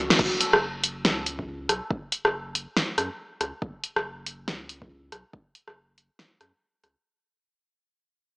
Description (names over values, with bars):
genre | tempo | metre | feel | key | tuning
deep dubstep | 140 BPM | 4/4 | swing 59% on 16ths, half-time | unclear | A4 = 440 Hz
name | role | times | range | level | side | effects
saturated sub bass | bass | 0.0-6.9 s | F#1 to F#2 | -41 LUFS | equal | none
deep house drum kit | drums | 0.1-6.9 s | crash cymbal, hi-hat, rim click, snare drum | -23 LUFS | equal | none
electronic kick drum | drums | 0.2-5.4 s | none | -30 LUFS | equal | none
room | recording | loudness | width
wet echo chamber reverb, RT60 1.5 s | small speaker sound | -25 LUFS | side -40 dB against mid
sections
0.2-7.0 A section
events
break 0.0; drum fill 0.0; band accent 0.1; fade-out 0.2-7.0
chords
none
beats
| 0.19 0.62 1.05 1.48 | 1.90 2.33 2.76 3.19 | 3.62 4.05 4.47 4.90 | 5.33 5.76 6.19 6.62